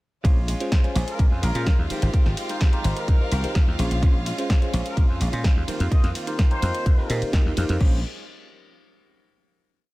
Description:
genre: filtered disco house.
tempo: 127 BPM.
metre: 4/4.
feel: straight.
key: Bb dorian.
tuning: A4 = 440 Hz.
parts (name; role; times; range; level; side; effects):
bell-like tine electric piano; accompaniment; 0.2-8.0 s; Db4 to Eb5; -31 LUFS; equal; fast stereo tremolo, phaser, vintage 12-bit sampler grit, sidechain pumping.
rich chamber violin section; sustained chords; 0.2-7.8 s; F4 to F5; -36 LUFS; left 2 dB; sidechain pumping.
direct-recorded clean electric guitar; riff; 0.2-8.0 s; Eb3 to G4; -34 LUFS; right 2 dB; sidechain pumping, analog delay.
dry thumbed slap bass; bass; 0.2-8.0 s; Ab1 to Bb2; -24 LUFS; equal; sidechain pumping.
electronic kick drum; drums; 0.2-7.9 s; none; -18 LUFS; equal; studio reverb.
house drum kit; drums; 0.2-7.9 s; crash cymbal, hi-hat, ride cymbal, snare drum; -32 LUFS; equal; sidechain pumping on hats, studio reverb, sidechain pumping on cymbals, analog delay.
mellow trumpet section; melody; 1.1-7.2 s; Bb4 to Eb5; -34 LUFS; left 1 dB; sidechain pumping, analog delay.
room: digital ambience.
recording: echo-heavy mix.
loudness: -19 LUFS.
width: side -20 dB against mid.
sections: 0.2-7.8 drop; 7.8-9.7 final chord.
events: drop 0.2-7.8.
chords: 0.2 Bbm7; 1.9 Abmaj7; 3.8 Bbm7; 5.7 F7sus4; 7.8 Bbm7.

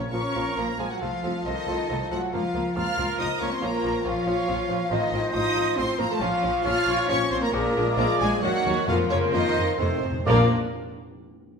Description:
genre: quick classical-period movement for symphony orchestra.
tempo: 124-141 BPM.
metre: 3/4.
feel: rubato.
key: Bb minor.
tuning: A4 = 442 Hz.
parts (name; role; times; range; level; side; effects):
dark studio violin section; melody; 0.0-10.5 s; Bb4 to F6; -32 LUFS; equal; none.
dark studio violin section; second line; 0.0-10.5 s; Bb3 to F5; -32 LUFS; right 1 dB; none.
silver concert flute; second line; 0.0-10.5 s; Bb4 to F6; -32 LUFS; equal; none.
mellow French horn section; sustained chords; 0.0-10.5 s; F3 to F4; -32 LUFS; left 4 dB; none.
mellow trumpet; stabs; 0.0-10.5 s; A4 to D5; -33 LUFS; right 2 dB; none.
dark studio cello section; bass; 0.0-10.5 s; Bb2 to F4; -31 LUFS; right 1 dB; none.
timpani; percussion; 0.0-0.3, 7.5-10.5 s; F2 to Bb2; -32 LUFS; equal; none.
dark clarinet; second line; 0.1-10.5 s; F4 to Bb4; -34 LUFS; left 3 dB; none.
mellow cor anglais; second line; 0.1-10.5 s; A4 to D5; -36 LUFS; right 1 dB; none.
mellow bassoon; accompaniment; 0.1-10.5 s; Eb3 to F3; -33 LUFS; equal; none.
warm studio viola section; accompaniment; 0.1-10.5 s; A3 to Ab4; -33 LUFS; left 1 dB; none.
rich studio double bass section; bass; 0.1-10.5 s; A1 to F2; -31 LUFS; right 1 dB; none.
room: wet stone room reverb, RT60 1.3 s.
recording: none.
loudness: -22 LUFS.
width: side -6 dB against mid.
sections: 0.0-10.3 A section; 10.3-11.6 B section.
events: timpani fill 9.8-10.3.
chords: 0.0 Bbm; 1.0 F7/C; 2.3 Bbm/Db; 3.6 Bbm; 4.9 F7/A; 6.2 Bbm; 7.5 Bb7; 8.4 Ebm7; 8.9 F7sus4; 9.8 F7; 10.3 Bb.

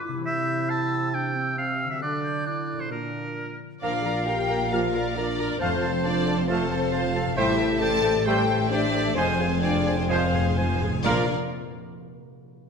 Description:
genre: cinematic.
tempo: 134 BPM.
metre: 4/4.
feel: straight.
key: Bb lydian.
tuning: A4 = 441 Hz.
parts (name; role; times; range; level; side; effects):
bright oboe; second line; 0.0-11.3 s; Bb4 to Bb5; -32 LUFS; right 1 dB; none.
bright silver concert flute; second line; 0.0-11.3 s; A4 to G6; -33 LUFS; equal; none.
warm clarinet; second line; 0.0-11.3 s; C4 to C5; -34 LUFS; right 1 dB; none.
concert harp; arpeggios; 0.0-11.3 s; F2 to C6; -34 LUFS; left 6 dB; none.
bright trombone section; sustained chords; 0.3-11.3 s; Bb2 to Bb3; -34 LUFS; right 4 dB; none.
warm symphonic violin section; melody; 3.8-11.3 s; C5 to A5; -31 LUFS; left 4 dB; none.
warm symphonic violin section; second line; 3.8-11.3 s; D5 to Bb5; -35 LUFS; left 1 dB; none.
rich symphonic viola section; accompaniment; 3.8-11.3 s; F4 to C5; -32 LUFS; right 3 dB; none.
warm French horn section; sustained chords; 3.8-11.2 s; C4 to A4; -28 LUFS; left 4 dB; none.
mellow trumpet section; stabs; 3.8-11.3 s; Bb4 to F5; -32 LUFS; right 3 dB; none.
rich symphonic cello section; bass; 3.8-11.3 s; F2 to Bb2; -31 LUFS; right 5 dB; none.
rich symphonic double bass section; bass; 3.8-11.3 s; F1 to Bb1; -32 LUFS; right 2 dB; none.
timpani; percussion; 5.6-6.2, 9.2-11.3 s; F2 to Bb2; -32 LUFS; left 1 dB; none.
room: wet scoring stage reverb, RT60 1.5 s.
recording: none.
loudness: -22 LUFS.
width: side -6 dB against mid.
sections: 0.0-3.8 A section; 3.8-11.1 B section; 11.1-12.7 C section.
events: slowing down 6.5-11.1; timpani fill 9.2-11.1.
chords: 0.2 C; 2.0 D; 2.9 Bb; 5.6 F; 7.4 Am7; 9.2 Fm; 11.1 Bb.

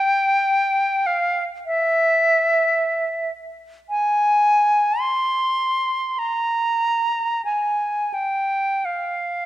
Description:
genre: classical, free, expressive piece for unaccompanied flute.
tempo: 40-55 BPM.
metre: 4/4.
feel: rubato.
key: F minor.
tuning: A4 = 440 Hz.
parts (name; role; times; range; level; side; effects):
bright silver concert flute; solo; 0.0-9.5 s; E5 to C6; -18 LUFS; equal; none.
room: moderate scoring stage reverb, RT60 1.8 s.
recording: dark, warm production.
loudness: -18 LUFS.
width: side -14 dB against mid.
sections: 0.0-9.5 A section.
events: none.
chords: none.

